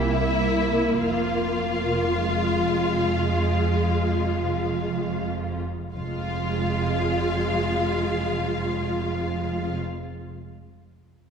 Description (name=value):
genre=classical, slow romantic movement for symphony orchestra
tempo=free time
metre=none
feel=none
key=F minor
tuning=A4 = 438 Hz
part: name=rich studio violin section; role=melody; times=0.0-9.8 s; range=E5 to F5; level=-31 LUFS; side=left 4 dB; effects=none
part: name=warm studio violin section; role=second line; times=0.0-9.8 s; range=E4 to F4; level=-31 LUFS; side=left 2 dB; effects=none
part: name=rich studio viola section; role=accompaniment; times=0.0-9.8 s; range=Ab3 to F4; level=-27 LUFS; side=equal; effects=none
part: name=rich studio cello section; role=bass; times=0.0-9.8 s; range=C2 to F2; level=-29 LUFS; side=right 2 dB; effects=none
part: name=warm studio double bass section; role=bass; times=0.0-9.8 s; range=F1 to C2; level=-30 LUFS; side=right 4 dB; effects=none
part: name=timpani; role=percussion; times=0.0-9.8 s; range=none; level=barely audible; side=none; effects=none
room=wet scoring stage reverb, RT60 2.1 s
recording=heard from further back in the room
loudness=-22 LUFS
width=side -6 dB against mid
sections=0.0-5.9 A section; 5.9-10.7 B section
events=slowing down 0.0-5.9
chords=0.0 C7; 1.0 Fm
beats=free time